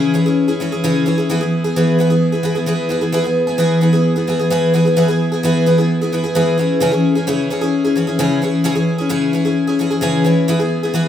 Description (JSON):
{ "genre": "rock", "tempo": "131 BPM", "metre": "4/4", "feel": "straight", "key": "E major", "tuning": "A4 = 443 Hz", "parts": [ { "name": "picked twelve-string acoustic guitar", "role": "solo", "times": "0.0-11.1 s", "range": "C#3 to G#4", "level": "-14 LUFS", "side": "left 1 dB", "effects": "none" } ], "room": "light reverb, studio reverb", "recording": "rough home demo mix", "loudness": "-14 LUFS", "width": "side -10 dB against mid", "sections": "0.0-3.1 A section; 3.1-11.1 A section", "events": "none", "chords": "0.0 C#m; 1.3 E; 6.6 C#m; 10.5 E" }